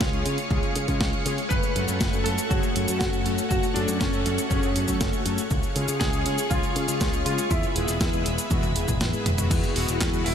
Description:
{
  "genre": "italo disco",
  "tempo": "120 BPM",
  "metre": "4/4",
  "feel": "straight",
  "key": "F# harmonic minor",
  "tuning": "A4 = 440 Hz",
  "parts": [
    { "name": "string machine, full ensemble", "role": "sustained chords", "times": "0.0-10.3 s", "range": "A3 to C#6", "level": "-30 LUFS", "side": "equal", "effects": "ensemble chorus" },
    { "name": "picked electric bass with an envelope filter", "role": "bass", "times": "0.0-10.3 s", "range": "E1 to C#3", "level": "-29 LUFS", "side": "equal", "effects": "tube saturation" },
    { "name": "clean 12-bit digital drum machine", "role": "drums", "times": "0.0-10.3 s", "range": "cabasa, crash cymbal, handclaps, hi-hat, snare drum, toms", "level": "-29 LUFS", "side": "equal", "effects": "none" },
    { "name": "electronic kick drum", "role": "drums", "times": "0.0-10.1 s", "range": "none", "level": "-28 LUFS", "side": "equal", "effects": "none" },
    { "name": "analog synth brass", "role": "stabs", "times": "0.1-10.3 s", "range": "C#3 to A4", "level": "-31 LUFS", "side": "left 3 dB", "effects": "chorus, ping-pong delay" },
    { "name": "clear grand piano", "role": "melody", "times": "1.5-10.3 s", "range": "C#4 to B4", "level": "-31 LUFS", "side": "equal", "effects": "ensemble chorus, diffuse ambient delay" }
  ],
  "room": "moderate huge ambient reverb, RT60 7.2 s",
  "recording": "dreamy mix soaked in reverb",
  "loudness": "-22 LUFS",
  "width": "side -8 dB against mid",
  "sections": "0.0-9.5 A section",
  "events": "drum fill 8.5-9.5; kick drops out 9.0-9.5",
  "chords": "0.0 C#; 1.5 F#m; 5.5 C#; 7.5 Eadd9"
}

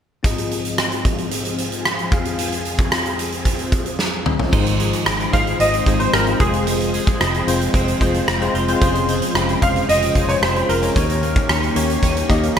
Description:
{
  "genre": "1980s-style pop",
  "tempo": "112 BPM",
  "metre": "4/4",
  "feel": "straight",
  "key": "Ab major",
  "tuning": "A4 = 439 Hz",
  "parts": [
    { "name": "bell-like tine electric piano", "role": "accompaniment", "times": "0.2-12.6 s", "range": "F2 to F5", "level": "-23 LUFS", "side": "left 4 dB", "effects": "ensemble chorus" },
    { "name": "string machine, cellos", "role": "sustained chords", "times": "0.2-12.6 s", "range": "F2 to C5", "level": "-28 LUFS", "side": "equal", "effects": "phaser, ensemble chorus" },
    { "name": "huge arena drum kit", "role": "drums", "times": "0.2-12.6 s", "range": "crash cymbal, hi-hat, kick drum, rim click, snare drum, toms", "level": "-20 LUFS", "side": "right 1 dB", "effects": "gated reverb" },
    { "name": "twelve-string electric guitar", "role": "riff", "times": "4.5-12.6 s", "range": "Eb3 to F4", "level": "-26 LUFS", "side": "right 5 dB", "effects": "analog chorus" },
    { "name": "vintage muted fingered electric bass", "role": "bass", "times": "4.5-12.6 s", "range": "F1 to Eb2", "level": "-24 LUFS", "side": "equal", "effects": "none" },
    { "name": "clear grand piano", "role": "melody", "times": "5.3-11.7 s", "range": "Ab4 to F5", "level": "-21 LUFS", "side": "right 1 dB", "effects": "ensemble chorus" }
  ],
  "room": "moderate lush hall reverb, RT60 1.7 s, small room ambience",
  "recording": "bright 1980s-style digital production",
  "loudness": "-16 LUFS",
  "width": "side -8 dB against mid",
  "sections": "0.2-4.5 A section; 4.5-12.6 B section",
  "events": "drum fill 4.0-4.5",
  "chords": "0.2 Ab6; 2.1 Fm; 4.5 Ab6; 6.4 Fm; 8.8 Dbmaj7/F; 11.0 Eb7"
}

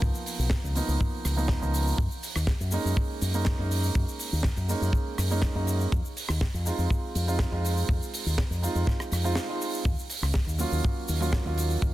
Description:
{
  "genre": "nu-disco, nu disco",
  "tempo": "122 BPM",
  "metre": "4/4",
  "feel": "straight",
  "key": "unclear",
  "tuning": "A4 = 440 Hz",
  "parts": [
    { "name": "dark concert grand piano", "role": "accompaniment", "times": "0.0-11.9 s", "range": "F3 to F4", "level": "-32 LUFS", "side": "right 3 dB", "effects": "sidechain pumping, analog delay" },
    { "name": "fingered electric bass with an envelope filter", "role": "bass", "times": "0.0-11.9 s", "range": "Cb2 to Gb2", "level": "-27 LUFS", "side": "equal", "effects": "none" },
    { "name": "kick drum", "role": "drums", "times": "0.0-11.9 s", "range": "none", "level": "-27 LUFS", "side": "equal", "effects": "none" },
    { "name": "tight funk drum kit", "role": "drums", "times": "0.0-11.9 s", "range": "hi-hat, rim click, shaker, snare drum", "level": "-34 LUFS", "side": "right 1 dB", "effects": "none" }
  ],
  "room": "small room ambience",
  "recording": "dense, heavily limited modern master",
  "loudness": "-25 LUFS",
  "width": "side -16 dB against mid",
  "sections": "0.0-11.9 A section",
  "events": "break 9.4-9.9",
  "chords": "0.0 Db13; 2.0 Gb69; 5.9 Fm7; 9.9 Ebm7"
}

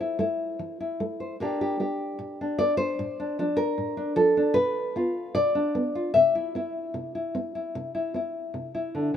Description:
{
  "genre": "folk, solo fingerstyle acoustic guitar",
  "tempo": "76 BPM",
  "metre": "4/4",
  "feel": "straight",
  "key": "unclear",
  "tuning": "A4 = 442 Hz",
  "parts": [
    { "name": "nylon-string guitar", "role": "solo", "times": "0.0-9.2 s", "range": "A2 to E5", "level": "-24 LUFS", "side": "left 1 dB", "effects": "none" }
  ],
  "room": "light reverb",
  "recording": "rough home demo mix",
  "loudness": "-24 LUFS",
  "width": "side -9 dB against mid",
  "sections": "0.0-9.2 A section",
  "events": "none",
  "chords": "0.0 Am; 1.4 Gm/Bb; 3.0 Dm/A; 4.6 Bdim; 6.2 C"
}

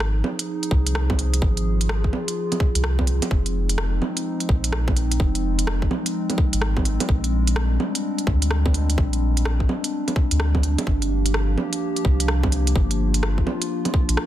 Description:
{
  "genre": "future garage",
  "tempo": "127 BPM",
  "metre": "4/4",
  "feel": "swing 64% on 16ths",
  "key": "F dorian",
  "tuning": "A4 = 440 Hz",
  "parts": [
    { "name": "warbly tape-like pad", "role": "sustained chords", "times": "0.0-14.3 s", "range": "F3 to Ab4", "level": "-26 LUFS", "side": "left 1 dB", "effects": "chorus, built-in reverb, sidechain pumping" },
    { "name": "soft dub sub bass", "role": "bass", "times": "0.0-14.2 s", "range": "F1 to D2", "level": "-21 LUFS", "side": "equal", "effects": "sidechain pumping" },
    { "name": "organic electronic drum kit", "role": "drums", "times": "0.0-14.3 s", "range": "bongos, hi-hat, rim click", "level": "-27 LUFS", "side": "right 2 dB", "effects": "small room ambience" },
    { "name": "electronic kick drum", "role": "drums", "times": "0.7-14.1 s", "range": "none", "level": "-21 LUFS", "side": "equal", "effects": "small room ambience" }
  ],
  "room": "digital ambience",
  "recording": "dense, heavily limited modern master",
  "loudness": "-19 LUFS",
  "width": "side -13 dB against mid",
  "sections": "0.0-14.3 A section",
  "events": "none",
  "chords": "0.0 Ab6; 3.3 Fm7; 7.1 Bb13; 10.9 Gm7"
}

